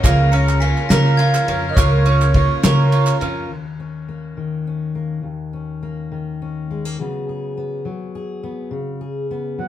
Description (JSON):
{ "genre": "indie folk with a building arrangement", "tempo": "69 BPM (dotted quarters)", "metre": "6/8", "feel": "straight", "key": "Eb minor", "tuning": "A4 = 440 Hz", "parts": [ { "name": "mellow accordion", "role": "melody", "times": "0.0-3.2, 9.6-9.7 s", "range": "Db5 to Bb5", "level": "-22 LUFS", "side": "right 5 dB", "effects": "none" }, { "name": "glockenspiel with hard plastic mallets", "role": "second line", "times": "0.0-3.2 s", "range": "F6 to Db7", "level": "-30 LUFS", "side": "left 8 dB", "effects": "none" }, { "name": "felt-muted upright piano", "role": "accompaniment", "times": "0.0-3.5 s", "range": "Db2 to Db5", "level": "-32 LUFS", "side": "right 1 dB", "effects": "none" }, { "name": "picked steel-string acoustic guitar", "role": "accompaniment", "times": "0.0-3.5 s", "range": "Db3 to Bb4", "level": "-27 LUFS", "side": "left 7 dB", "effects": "none" }, { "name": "warm chamber string section", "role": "sustained chords", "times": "0.0-3.5 s", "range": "Db3 to Bb4", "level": "-30 LUFS", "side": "right 1 dB", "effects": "none" }, { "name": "mandolin", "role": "arpeggios", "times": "0.0-3.5 s", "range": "Bb3 to Bb4", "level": "-24 LUFS", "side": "right 4 dB", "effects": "none" }, { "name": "upright bass", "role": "bass", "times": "0.0-3.4 s", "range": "Db2 to Db3", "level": "-16 LUFS", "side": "equal", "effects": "none" }, { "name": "cloth-damped thuddy drum kit", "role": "drums", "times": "0.0-3.3 s", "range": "kick drum, ride cymbal, snare drum", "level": "-20 LUFS", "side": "equal", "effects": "none" }, { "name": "group handclap", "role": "percussion", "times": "0.1-3.3 s", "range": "none", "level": "-29 LUFS", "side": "right 4 dB", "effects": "none" }, { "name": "fingerpicked steel-string acoustic guitar", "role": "accompaniment", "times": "3.5-9.7 s", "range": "Eb2 to Ab4", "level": "-25 LUFS", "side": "left 4 dB", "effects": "none" } ], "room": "wet large studio reverb, RT60 0.9 s", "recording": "band playing live in one room", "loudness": "-16 LUFS", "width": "side -12 dB against mid", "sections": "0.0-3.5 A section; 3.5-9.7 B section", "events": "none", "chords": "0.0 Bbm/Db; 3.5 Eb5; 7.0 Db7sus4" }